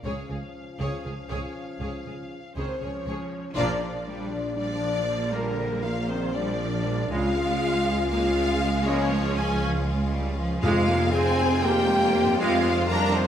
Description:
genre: cinematic, epic orchestral film score.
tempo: 238 BPM (eighths).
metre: 7/8.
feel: straight.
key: unclear.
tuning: A4 = 439 Hz.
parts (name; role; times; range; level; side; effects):
rich symphonic violin section; melody; 0.0-13.3 s; Bb4 to Bb5; -36 LUFS; left 4 dB; none.
warm symphonic violin section; second line; 0.0-13.3 s; Ab4 to Bb5; -34 LUFS; left 2 dB; none.
rich studio viola section; accompaniment; 0.0-13.3 s; D3 to Ab4; -32 LUFS; right 2 dB; none.
dark French horn section; sustained chords; 0.0-13.3 s; F3 to Bb4; -29 LUFS; left 2 dB; none.
warm symphonic cello section; bass; 0.0-13.3 s; Db3 to C4; -31 LUFS; right 2 dB; none.
warm symphonic double bass section; bass; 0.0-13.3 s; Bb1 to F2; -30 LUFS; right 1 dB; none.
warm tuba; bass; 0.0-13.3 s; F1 to Db2; -35 LUFS; right 3 dB; none.
mellow hollow flute section; second line; 2.6-13.3 s; Bb4 to Bb5; -32 LUFS; equal; none.
rich symphonic string section; sustained chords; 3.5-13.3 s; C4 to F5; -34 LUFS; left 1 dB; none.
clear trombone section; sustained chords; 3.6-12.6 s; C3 to Bb3; -35 LUFS; right 3 dB; none.
timpani; percussion; 10.6-11.3 s; F2; -30 LUFS; equal; none.
room: wet scoring stage reverb, RT60 1.8 s.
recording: none.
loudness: -23 LUFS.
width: side -9 dB against mid.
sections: 0.0-3.6 A section; 3.6-13.3 B section.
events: band accent 3.6-4.1.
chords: 0.0 Db; 3.6 Bb; 7.1 Db; 10.6 Fm.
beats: | 0.04 0.29 0.54 0.80 1.05 1.30 1.55 | 1.80 2.06 2.31 2.56 2.81 3.06 3.32 | 3.57 3.82 4.07 4.32 4.58 4.83 5.08 | 5.33 5.58 5.84 6.09 6.34 6.59 6.84 | 7.10 7.35 7.60 7.85 8.11 8.36 8.61 | 8.86 9.11 9.37 9.62 9.87 10.12 10.38 | 10.63 10.88 11.13 11.38 11.63 11.89 12.14 | 12.39 12.64 12.90 13.15.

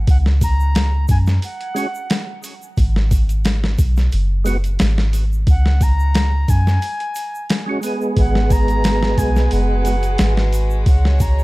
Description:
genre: trip hop.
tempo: 89 BPM.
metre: 4/4.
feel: swing 53% on 16ths.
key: G# minor.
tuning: A4 = 441 Hz.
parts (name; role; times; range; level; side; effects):
soft 808-style bass; bass; 0.0-11.4 s; F#1 to F#2; -16 LUFS; equal; none.
bright reedy silver concert flute; melody; 0.1-11.4 s; F#5 to A#5; -27 LUFS; equal; vintage 12-bit sampler grit, tape echo.
boom bap sampler-style drum kit; drums; 0.1-11.4 s; hi-hat, kick drum, snare drum; -19 LUFS; equal; small room ambience.
egg shaker; percussion; 0.1-11.4 s; none; -38 LUFS; right 2 dB; none.
percussive tonewheel organ; accompaniment; 1.7-10.3 s; G#3 to G#4; -22 LUFS; right 2 dB; overdrive, chorus vibrato, stopped rotary speaker, harmonic tremolo.
warm studio violin section; sustained chords; 8.2-11.4 s; G#3 to C#5; -28 LUFS; right 2 dB; none.
room: studio reverb.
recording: dark, warm production.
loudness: -15 LUFS.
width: side -20 dB against mid.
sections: 0.0-11.4 A section.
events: none.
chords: 0.1 C#sus4; 2.8 G#m7; 5.5 C#sus4; 8.2 G#m7; 10.9 C#sus4.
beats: | 0.08 0.75 1.43 2.10 | 2.78 3.45 4.12 4.80 | 5.47 6.15 6.82 7.50 | 8.17 8.84 9.52 10.19 | 10.87.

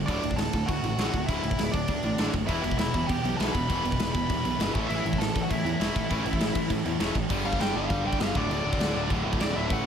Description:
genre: punk rock.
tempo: 200 BPM.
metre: 4/4.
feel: straight.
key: unclear.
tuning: A4 = 439 Hz.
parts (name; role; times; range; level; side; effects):
distorted electric guitar; riff; 0.0-9.8 s; D2 to A3; -33 LUFS; left 9 dB; overdrive.
tight distorted guitar; riff; 0.0-9.8 s; D2 to A3; -33 LUFS; right 10 dB; distortion.
fuzz picked electric bass; bass; 0.0-9.8 s; D1 to A2; -32 LUFS; equal; overdrive.
nasal lead guitar with a parked wah; melody; 0.1-9.9 s; D4 to B5; -32 LUFS; left 1 dB; overdrive.
big rock drum kit; drums; 0.1-9.8 s; crash cymbal, kick drum, snare drum; -30 LUFS; equal; none.
high-gain distorted guitar; riff; 2.5-9.8 s; D2 to A4; -34 LUFS; equal; distortion.
room: light reverb.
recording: none.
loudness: -24 LUFS.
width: side -8 dB against mid.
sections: 0.0-7.3 A section; 7.3-9.9 B section.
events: lead electric guitar solo 7.3-9.9.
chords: 0.1 D; 2.5 Em; 4.7 A; 7.3 G5; 8.4 D5.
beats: | 0.09 0.39 0.69 0.99 | 1.29 1.59 1.89 2.19 | 2.49 2.79 3.10 3.40 | 3.70 4.00 4.30 4.60 | 4.90 5.20 5.50 5.80 | 6.10 6.40 6.70 7.00 | 7.30 7.60 7.90 8.20 | 8.50 8.80 9.10 9.40 | 9.70.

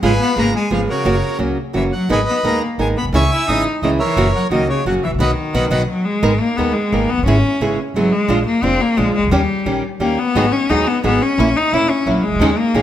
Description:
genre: tango.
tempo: 175 BPM.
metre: 3/4.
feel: rubato.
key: B major, G# minor from 6.2 s.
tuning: A4 = 440 Hz.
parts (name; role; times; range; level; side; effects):
bandoneon; melody; 0.0-5.8 s; F#4 to E6; -20 LUFS; equal; none.
clear cello; second line; 0.0-12.8 s; C#3 to E4; -18 LUFS; left 2 dB; none.
nylon-string guitar; accompaniment; 0.0-12.8 s; C#3 to A#4; -20 LUFS; right 2 dB; none.
upright bass; bass; 0.0-12.8 s; E1 to D#2; -21 LUFS; right 1 dB; none.
dark symphonic string section; stabs; 10.3-12.8 s; G#3 to F#4; -24 LUFS; equal; none.
room: moderate recital hall reverb, RT60 1.6 s.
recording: none.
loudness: -14 LUFS.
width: side -11 dB against mid.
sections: 0.0-6.2 A section; 6.2-12.8 B section.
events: band accent 5.2-6.2; cello solo 6.2-12.8.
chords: 0.0 C#7/G#; 1.1 F#; 2.1 G#madd9; 3.1 C#m; 4.2 F#; 5.2 B; 6.2 G#madd9; 7.3 C#m7/G#; 8.3 A#7; 9.3 D#7; 10.4 G#m7; 11.4 A#dim.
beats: | 0.03 0.37 0.71 | 1.06 1.41 1.75 | 2.10 2.45 2.79 | 3.14 3.49 3.83 | 4.17 4.51 4.86 | 5.20 5.54 5.89 | 6.24 6.58 6.93 | 7.27 7.61 7.95 | 8.29 8.63 8.98 | 9.32 9.66 10.01 | 10.35 10.70 11.04 | 11.38 11.72 12.06 | 12.40 12.74.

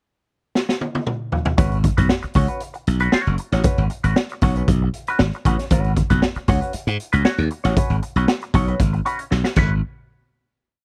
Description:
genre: funk.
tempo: 117 BPM.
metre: 4/4.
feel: straight.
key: G# minor.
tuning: A4 = 440 Hz.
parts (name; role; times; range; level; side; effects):
raw garage drum kit; drums; 0.6-9.7 s; crash cymbal, hi-hat, kick drum, snare drum, toms; -22 LUFS; equal; none.
semi-hollow electric guitar; accompaniment; 1.6-9.7 s; C#4 to C#5; -27 LUFS; equal; wah, lush chorus.
glassy slap bass; bass; 1.6-9.8 s; F#1 to G#2; -22 LUFS; equal; none.
room: small room reverb.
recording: dry, close 1970s-style studio recording.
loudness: -20 LUFS.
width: mono.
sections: 0.0-1.6 pickup bar; 1.6-9.8 groove; 9.8-10.8 final hit.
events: drum fill 0.6-1.6, 9.3-9.8.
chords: 0.0 N.C.; 1.6 G#m7; 9.8 N.C..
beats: 0.04 0.55 1.07 | 1.59 2.10 2.62 3.13 | 3.65 4.16 4.68 5.19 | 5.71 6.22 6.74 7.25 | 7.76 8.28 8.79 9.31.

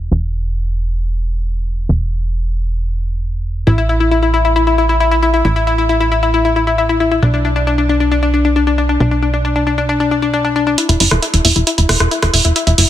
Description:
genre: uplifting trance.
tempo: 135 BPM.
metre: 4/4.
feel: straight.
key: unclear.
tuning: A4 = 440 Hz.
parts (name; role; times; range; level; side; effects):
plucky analog bass; bass; 0.0-12.9 s; E1 to B1; -16 LUFS; right 1 dB; none.
analog pluck; arpeggios; 3.7-12.8 s; D4 to E4; -14 LUFS; left 4 dB; chorus, ping-pong delay.
punchy analog drum machine; drums; 10.8-12.9 s; hi-hat, rim click; -14 LUFS; right 2 dB; low-pass filter on hats, low-pass filter on snare, low-pass filter on room.
room: light reverb.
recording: dense, heavily limited modern master.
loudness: -12 LUFS.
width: side -12 dB against mid.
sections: 0.0-10.8 A section; 10.8-12.9 B section.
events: build-up 10.8-12.9.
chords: 0.0 N.C.; 3.7 A5; 7.2 Bm; 10.8 Esus2.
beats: | 0.12 0.56 1.00 1.45 | 1.89 2.34 2.78 3.23 | 3.67 4.12 4.56 5.00 | 5.45 5.89 6.34 6.78 | 7.23 7.67 8.12 8.56 | 9.00 9.45 9.89 10.34 | 10.78 11.23 11.67 12.12 | 12.56.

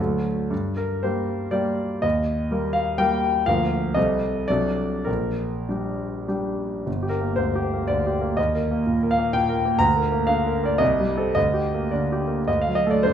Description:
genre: classical, romantic character piece for solo piano.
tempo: 95-130 BPM.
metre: 3/4.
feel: rubato.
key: G minor.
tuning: A4 = 436 Hz.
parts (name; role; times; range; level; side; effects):
warm concert grand piano; solo; 0.0-13.1 s; G1 to Bb5; -20 LUFS; equal; none.
room: moderate recital hall reverb, RT60 1.4 s.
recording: recorded in a church or concert hall.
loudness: -21 LUFS.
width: side -8 dB against mid.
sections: 0.0-6.9 A section; 6.9-13.1 A section.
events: none.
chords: 0.0 D; 0.5 Gm; 2.0 Eb; 3.5 Bb/D; 4.0 Am7b5/C; 4.5 D7/C; 5.1 Gm/Bb; 6.9 Gm; 8.4 Eb; 9.8 Bb/D; 10.8 Am7b5/C; 11.4 Gm/D; 12.5 D.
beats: | 0.51 1.03 1.53 | 2.04 2.52 2.98 | 3.47 3.96 4.48 | 5.07 5.69 6.29 | 6.87 7.39 7.90 | 8.38 8.85 9.32 | 9.80 10.29 10.80 | 11.36 11.91 12.47 | 13.04.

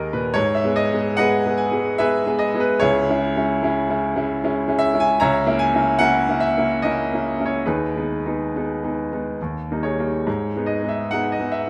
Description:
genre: classical, romantic character piece for solo piano.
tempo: 65-77 BPM.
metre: 3/4.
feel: rubato.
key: G# minor.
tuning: A4 = 440 Hz.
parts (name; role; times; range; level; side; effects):
bright grand piano; solo; 0.0-11.7 s; C#2 to A#5; -21 LUFS; equal; none.
room: moderate recital hall reverb, RT60 1.5 s.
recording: none.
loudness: -21 LUFS.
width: mono.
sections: 0.4-11.7 A section.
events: none.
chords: 0.4 G#m; 2.8 C#m; 5.2 A#dim/C#; 7.7 G#m/D#; 9.4 D#; 10.3 G#m.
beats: | 0.35 1.19 2.00 | 2.83 3.63 4.41 | 5.20 5.99 6.81 | 7.65 8.51 9.39 | 10.26 11.11.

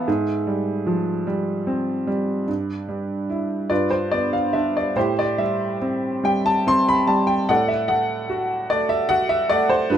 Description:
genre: classical, lyrical solo piano.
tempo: 49 BPM (dotted quarters).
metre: 6/8.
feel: rubato.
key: unclear.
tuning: A4 = 442 Hz.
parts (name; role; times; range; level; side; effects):
warm grand piano; solo; 0.0-10.0 s; G2 to C6; -19 LUFS; equal; none.
room: light reverb.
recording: close, detailed microphones.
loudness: -19 LUFS.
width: side -9 dB against mid.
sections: 0.0-10.0 A section.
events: none.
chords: 0.1 Fmadd9/Ab; 2.5 G69; 3.7 G7; 5.0 Am7; 7.5 D/A.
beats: | 0.07 1.27 | 2.48 3.71 | 4.96 6.24 | 7.50 8.71 | 9.90.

